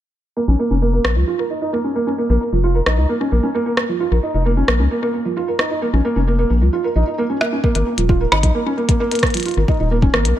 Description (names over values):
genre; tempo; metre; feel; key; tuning
IDM; 132 BPM; 4/4; straight; Bb phrygian; A4 = 441 Hz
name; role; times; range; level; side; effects
felt-muted upright piano; arpeggios; 0.4-10.4 s; F3 to Bb4; -19 LUFS; right 2 dB; low-pass filter, digital delay
round analog bass; bass; 0.5-10.3 s; Eb1 to Db2; -16 LUFS; left 1 dB; none
glitchy drum kit; drums; 1.0-10.3 s; hi-hat, rim click; -21 LUFS; equal; ping-pong delay
electronic kick drum; drums; 7.6-10.1 s; none; -17 LUFS; left 1 dB; none
room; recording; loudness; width
little or no reverb; none; -15 LUFS; side -12 dB against mid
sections
0.4-10.4 A section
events
filter sweep on analog synth bass 0.4-10.4; filter sweep on felt piano 0.4-10.4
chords
0.4 Bbm; 7.6 Ab5